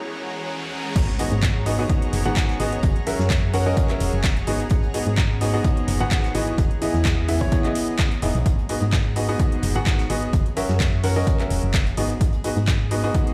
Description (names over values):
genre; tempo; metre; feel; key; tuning
piano house; 128 BPM; 4/4; swing 54% on 16ths; G# minor; A4 = 439 Hz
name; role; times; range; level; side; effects
warm upright piano; riff; 0.0-13.3 s; G#2 to F#5; -28 LUFS; equal; sidechain pumping, digital delay
riser and impact; sound effects; 0.0-2.8 s; none; -35 LUFS; equal; none
granular cloud pad; texture; 0.0-13.3 s; E3 to A#5; -36 LUFS; equal; built-in reverb, sidechain pumping
solid FM bass; bass; 1.0-13.1 s; E1 to G#2; -26 LUFS; equal; sidechain pumping
electronic kick drum; drums; 1.0-13.2 s; none; -25 LUFS; equal; small room ambience
garage drum kit; drums; 1.0-13.3 s; crash cymbal, handclaps, hi-hat; -32 LUFS; equal; overdrive, small room ambience
soft brush drum kit; drums; 1.0-13.3 s; hi-hat, snare drum; -42 LUFS; equal; none
room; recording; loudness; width
small room reverb; played on a big sound system in a bare room, stone room reverb; -22 LUFS; mono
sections
1.0-13.3 A section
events
riser 0.0-1.0; drop 1.0-13.3; impact 1.0-2.8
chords
0.0 Emaj7; 1.0 G#m7; 2.8 F#7; 4.5 G#m7; 6.6 Emaj7; 8.5 G#m7; 10.3 F#7; 12.0 G#m7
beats
0.02 0.49 | 0.96 1.43 1.90 2.36 | 2.83 3.30 3.77 4.24 | 4.71 5.18 5.64 6.11 | 6.58 7.05 7.52 7.99 | 8.46 8.93 9.39 9.86 | 10.33 10.80 11.27 11.74 | 12.21 12.68 13.14